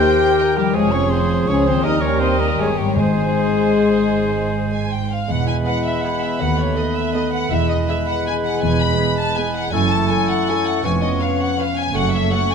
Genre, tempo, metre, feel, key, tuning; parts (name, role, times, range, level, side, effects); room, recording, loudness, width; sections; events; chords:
classical, orchestral ballroom waltz; 148-175 BPM; 3/4; rubato; Ab major, E major from 5.3 s; A4 = 440 Hz
dark studio violin section; melody; 0.0-12.5 s; G4 to B5; -25 LUFS; left 4 dB
mellow clarinet; second line; 0.0-12.5 s; B3 to G5; -28 LUFS; equal
silver concert flute; second line; 0.0-12.5 s; G5 to G6; -29 LUFS; left 1 dB
warm chamber violin section; second line; 0.0-12.5 s; G4 to B5; -29 LUFS; left 2 dB
warm oboe; second line; 0.0-12.5 s; Ab4 to C#5; -29 LUFS; right 4 dB
dark chamber viola section; accompaniment; 0.0-12.4 s; B3 to Eb5; -28 LUFS; right 3 dB
mellow bassoon; accompaniment; 0.0-12.5 s; Eb3 to B3; -26 LUFS; right 4 dB
warm French horn section; sustained chords; 0.0-12.5 s; G3 to A4; -22 LUFS; left 5 dB
concert harp; arpeggios; 0.0-12.5 s; E#2 to G#5; -27 LUFS; left 10 dB
warm symphonic double bass section; bass; 0.7-12.2 s; E1 to Eb2; -24 LUFS; right 6 dB
warm chamber cello section; bass; 0.8-12.2 s; Db2 to Ab2; -25 LUFS; right 5 dB
timpani; percussion; 3.0-3.5 s; Ab2; -26 LUFS; equal
light reverb; close, detailed microphones; -16 LUFS; side -6 dB against mid
0.0-5.3 A section; 5.3-12.5 B section
0.0 Eb; 0.7 Db/F; 1.8 Eb; 3.0 Ab; 5.3 E; 6.4 B7/D#; 7.5 E; 9.7 F#m7; 10.8 C#7/E#; 11.9 F#m